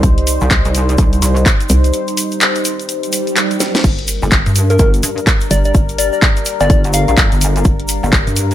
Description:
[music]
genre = bass house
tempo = 126 BPM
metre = 4/4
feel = swing 61% on 16ths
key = G minor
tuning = A4 = 438 Hz
[part]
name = sweeping resonant pad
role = sustained chords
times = 0.0-8.5 s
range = G3 to C5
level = -21 LUFS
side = left 1 dB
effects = chorus, sidechain pumping
[part]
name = hollow knocking FM bass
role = bass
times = 0.0-8.2 s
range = G1 to C2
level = -16 LUFS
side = equal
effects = tube saturation, sidechain pumping
[part]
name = electronic kick drum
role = drums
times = 0.0-8.2 s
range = none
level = -13 LUFS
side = equal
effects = none
[part]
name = house drum kit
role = drums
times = 0.0-8.5 s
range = crash cymbal, handclaps, hi-hat, snare drum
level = -17 LUFS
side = left 1 dB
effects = none
[part]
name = egg shaker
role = percussion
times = 0.0-8.5 s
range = none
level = -24 LUFS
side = right 3 dB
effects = none
[part]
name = pulsing pluck wobble bass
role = bass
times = 0.4-8.5 s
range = G1 to G2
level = -14 LUFS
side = equal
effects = chorus, overdrive, sidechain pumping
[part]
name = swell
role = sound effects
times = 3.1-3.8 s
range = none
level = -22 LUFS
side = right 3 dB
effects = none
[part]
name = soft struck synth lead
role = melody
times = 4.7-7.1 s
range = Bb4 to F5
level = -19 LUFS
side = left 2 dB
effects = chorus, dub echo
[sound]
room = light reverb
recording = none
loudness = -11 LUFS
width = side -12 dB against mid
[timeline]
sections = 0.0-8.5 A section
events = break 1.9-3.8; swell 3.1-3.8; drum fill 3.6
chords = 0.0 Cm; 3.8 Gm

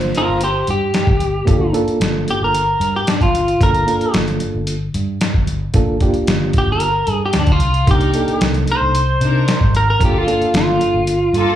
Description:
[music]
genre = straight-eighth soul blues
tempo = 112 BPM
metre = 4/4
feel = straight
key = G minor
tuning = A4 = 440 Hz
[part]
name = reed electric piano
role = accompaniment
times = 0.0-11.1 s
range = Bb3 to C5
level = -21 LUFS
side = right 3 dB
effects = fast tremolo, slapback echo
[part]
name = vintage muted fingered electric bass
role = bass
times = 0.0-11.6 s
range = G1 to C3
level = -19 LUFS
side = equal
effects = none
[part]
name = boom bap sampler-style drum kit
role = drums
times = 0.0-11.5 s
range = hi-hat, kick drum, snare drum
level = -18 LUFS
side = equal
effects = none
[part]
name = electric guitar at the edge of break-up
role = melody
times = 0.2-11.6 s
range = D4 to C5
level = -17 LUFS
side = equal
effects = slapback echo
[part]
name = dark symphonic string section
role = sustained chords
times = 7.9-11.6 s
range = Bb3 to Bb4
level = -24 LUFS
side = left 2 dB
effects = none
[sound]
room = light reverb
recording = live gig heard through the venue's PA, club reverb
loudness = -14 LUFS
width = side -11 dB against mid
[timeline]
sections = 0.0-11.6 A section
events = clean electric guitar solo 0.0-11.6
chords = 0.0 Gm9; 7.9 Cm9; 10.0 Gm9

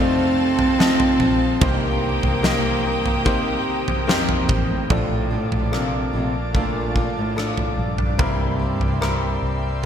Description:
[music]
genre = pop ballad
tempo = 73 BPM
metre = 4/4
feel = straight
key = Bb major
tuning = A4 = 440 Hz
[part]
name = dark cello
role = melody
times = 0.0-9.9 s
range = F2 to C4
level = -23 LUFS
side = equal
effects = none
[part]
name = bright studio violin section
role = second line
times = 0.0-4.9 s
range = G4 to A5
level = -29 LUFS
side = left 1 dB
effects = none
[part]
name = clear concert grand piano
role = accompaniment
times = 0.0-9.9 s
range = G2 to Eb5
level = -26 LUFS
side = left 3 dB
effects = none
[part]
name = airy breathy pad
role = sustained chords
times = 0.0-9.9 s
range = C5 to Eb6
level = -30 LUFS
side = equal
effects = chorus
[part]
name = picked steel-string acoustic guitar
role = arpeggios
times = 0.0-9.9 s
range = F2 to G4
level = -31 LUFS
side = right 6 dB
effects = ping-pong delay
[part]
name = vintage muted fingered electric bass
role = bass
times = 0.0-9.9 s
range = A1 to F2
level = -27 LUFS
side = equal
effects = none
[part]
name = huge arena drum kit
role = drums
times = 0.6-9.2 s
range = kick drum, rim click, snare drum, toms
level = -23 LUFS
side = equal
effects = none
[sound]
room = moderate lush hall reverb, RT60 2.7 s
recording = bright 1980s-style digital production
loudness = -18 LUFS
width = side -8 dB against mid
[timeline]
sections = 0.0-4.9 A section; 4.9-9.9 B section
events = none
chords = 0.0 F7; 1.6 Cm7; 4.9 Bbmaj7; 8.2 C7

